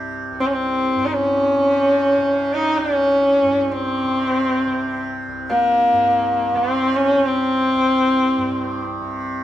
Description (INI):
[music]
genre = indian classical, Hindustani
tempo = free time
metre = none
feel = none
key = unclear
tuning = A4 = 440 Hz
[part]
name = tanpura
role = drone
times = 0.0-9.4 s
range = C2 to C3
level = -27 LUFS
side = right 1 dB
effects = none
[part]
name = rich sarangi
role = melody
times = 0.4-8.8 s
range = Bb3 to Eb4+25c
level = -16 LUFS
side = equal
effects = none
[sound]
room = moderate stone room reverb, RT60 1.1 s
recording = band playing live in one room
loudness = -16 LUFS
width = side -12 dB against mid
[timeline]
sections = 0.0-9.4 A section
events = none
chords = none